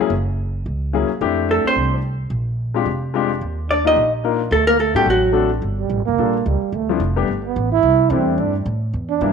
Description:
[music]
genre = jazz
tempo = 217 BPM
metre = 4/4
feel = swing 58% on 8ths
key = G minor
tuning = A4 = 441 Hz
[part]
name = warm concert grand piano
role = accompaniment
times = 0.0-9.3 s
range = E3 to Bb4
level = -21 LUFS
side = left 10 dB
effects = none
[part]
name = upright bass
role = bass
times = 0.0-9.3 s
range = F1 to A2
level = -22 LUFS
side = right 1 dB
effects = none
[part]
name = vintage hollow-body jazz guitar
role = melody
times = 1.5-5.5 s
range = F#4 to Eb5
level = -17 LUFS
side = equal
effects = none
[part]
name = mellow trombone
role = second line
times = 1.5-9.3 s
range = F#3 to E4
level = -20 LUFS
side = right 11 dB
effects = none
[sound]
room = moderate echo chamber reverb, RT60 1.3 s, small room ambience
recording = 1960s-style stereo with parts hard left and right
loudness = -16 LUFS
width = side -6 dB against mid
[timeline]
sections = 0.0-5.6 A section; 5.6-9.3 B section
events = trombone solo 5.6-9.3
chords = 0.1 F#9; 1.2 Fmaj13; 2.3 Bb13; 3.4 Ebmaj7sus2; 4.5 D7; 5.6 Gm7; 6.7 Dm7; 7.3 Gadd9; 7.8 C6

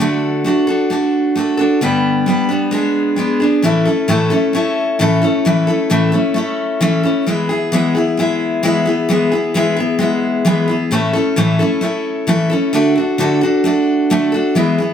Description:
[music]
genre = country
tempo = 132 BPM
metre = 4/4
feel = straight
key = A major from 3.6 s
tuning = A4 = 441 Hz
[part]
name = picked steel-string acoustic guitar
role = solo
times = 0.0-14.9 s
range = G2 to B4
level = -13 LUFS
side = left 1 dB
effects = none
[sound]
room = moderate large studio reverb, RT60 0.8 s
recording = none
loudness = -13 LUFS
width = side -8 dB against mid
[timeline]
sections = 0.0-3.6 A section; 3.6-14.9 B section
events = none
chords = 0.0 D; 1.8 G; 2.7 G#dim; 3.6 A; 7.3 E; 10.9 A; 12.7 D

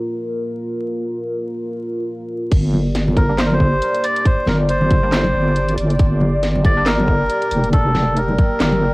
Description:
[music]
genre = deep dubstep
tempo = 138 BPM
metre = 4/4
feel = swing 58% on 16ths, half-time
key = G minor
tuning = A4 = 440 Hz
[part]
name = dark analog pad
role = sustained chords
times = 0.0-8.9 s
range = Bb3 to D5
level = -24 LUFS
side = equal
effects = chorus, phaser, cassette tape
[part]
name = deep soft wobble bass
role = bass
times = 2.5-8.9 s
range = F1 to G1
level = -18 LUFS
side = equal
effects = chorus
[part]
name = electronic kick drum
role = drums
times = 2.5-8.5 s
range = none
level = -15 LUFS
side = equal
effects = small room ambience, cassette tape
[part]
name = garage drum kit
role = drums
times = 2.5-8.7 s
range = crash cymbal, handclaps, hi-hat, snare drum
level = -24 LUFS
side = equal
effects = small room ambience, cassette tape
[part]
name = congas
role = percussion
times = 2.7-8.8 s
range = none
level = -24 LUFS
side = equal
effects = none
[part]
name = melodica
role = melody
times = 3.2-8.9 s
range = A4 to D5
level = -20 LUFS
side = equal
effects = cassette tape, dub echo
[part]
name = filtered dub chord stab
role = stabs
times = 3.3-8.7 s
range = G3 to D4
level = -30 LUFS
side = equal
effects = none
[sound]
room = light reverb, digital ambience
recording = home recording on cassette, vinyl crackle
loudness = -15 LUFS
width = side -23 dB against mid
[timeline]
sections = 0.0-2.5 A section; 2.5-8.9 B section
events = drop 2.5-8.9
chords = 0.0 N.C.; 2.5 Gm

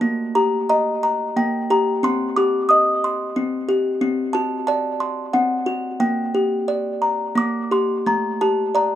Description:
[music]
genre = children's music, lullaby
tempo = 90 BPM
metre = 3/4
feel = rubato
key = G harmonic minor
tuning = A4 = 440 Hz
[part]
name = music box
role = solo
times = 0.0-9.0 s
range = A3 to Eb6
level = -18 LUFS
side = left 1 dB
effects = slapback echo
[sound]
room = little or no reverb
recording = recorded outdoors, with no room sound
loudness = -18 LUFS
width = side -11 dB against mid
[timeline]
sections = 0.0-8.1 A section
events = none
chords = 0.0 Eb; 2.0 Cm; 4.0 D7; 6.0 Gm; 8.1 Gsus2

